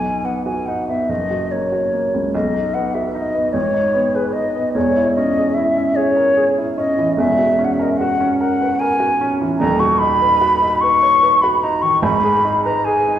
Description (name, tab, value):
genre	classical, romantic duo for flute and grand piano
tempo	49 BPM (dotted quarters)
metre	6/8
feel	rubato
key	B major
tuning	A4 = 440 Hz
part	mellow hollow silver concert flute	melody	0.0-13.2 s	B4 to C#6	-16 LUFS	left 1 dB	none
part	warm baby grand piano	accompaniment	0.0-13.2 s	D#1 to C#5	-19 LUFS	right 1 dB	none
room	wet recital hall reverb, RT60 1.4 s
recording	heard from further back in the room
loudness	-14 LUFS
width	side -10 dB against mid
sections	0.0-13.2 A section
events	none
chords	0.0 B; 1.1 F#; 2.3 B; 3.5 G#m; 4.8 C#m/E; 7.2 F#7/E; 9.6 B/D#; 12.0 G#m